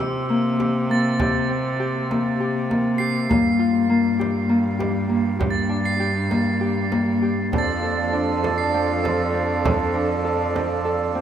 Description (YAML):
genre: contemporary instrumental, chamber music in an uneven meter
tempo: 199 BPM (eighths)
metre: 7/8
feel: straight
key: G minor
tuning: A4 = 440 Hz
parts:
  - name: Celtic harp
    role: arpeggios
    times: 0.0-11.2 s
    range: Bb3 to A4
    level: -22 LUFS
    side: left 2 dB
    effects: none
  - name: warm cello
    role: bass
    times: 0.0-11.2 s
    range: F2 to C3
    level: -26 LUFS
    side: right 1 dB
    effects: none
  - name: frame drum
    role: percussion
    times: 0.0-10.8 s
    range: none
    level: -30 LUFS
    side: right 3 dB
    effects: none
  - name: crotales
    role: texture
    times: 0.0-10.0 s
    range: E6 to C7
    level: -28 LUFS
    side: right 4 dB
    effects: none
  - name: pedal harmonium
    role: sustained chords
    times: 7.5-11.2 s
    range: F3 to A4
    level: -24 LUFS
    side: right 5 dB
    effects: none
room: wet huge ambient reverb, RT60 8.2 s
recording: in a vast, echoing space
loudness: -19 LUFS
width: side -9 dB against mid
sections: 0.0-11.2 A section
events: none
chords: 0.0 C7; 3.3 Gm7; 7.5 F6